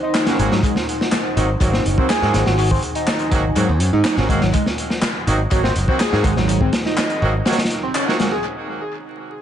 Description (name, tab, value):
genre	breakbeat, breaks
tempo	123 BPM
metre	4/4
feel	straight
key	unclear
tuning	A4 = 440 Hz
part	deep dark ambient pad	sustained chords	0.0-9.4 s	B#3 to B#5	-28 LUFS	equal	chorus, built-in reverb, sidechain pumping
part	overdriven synth lead	riff	0.0-8.4 s	F#3 to G#4	-22 LUFS	equal	phaser, tape echo
part	crunchy breakbeat drum kit	drums	0.1-8.3 s	hi-hat, kick drum, snare drum	-20 LUFS	equal	none
part	electronic handclaps	drums	0.1-8.1 s	none	-29 LUFS	left 1 dB	low-pass filter on snare, low-pass filter on room, tape echo
part	bright horn section	stabs	0.3-8.3 s	F#3 to F#4	-26 LUFS	right 3 dB	vintage 12-bit sampler grit, tape echo
part	modern bright picked electric bass	bass	0.4-7.4 s	F#1 to G#2	-19 LUFS	equal	none
room	moderate spring reverb, RT60 1.6 s, studio reverb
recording	echo-heavy mix, vinyl crackle, nothing above 10.6 kHz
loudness	-16 LUFS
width	side -10 dB against mid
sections	0.0-8.4 A section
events	filter sweep on analog synth lead 0.0-8.4; kick drops out 7.5-8.4; band accent 8.0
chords	0.0 G#7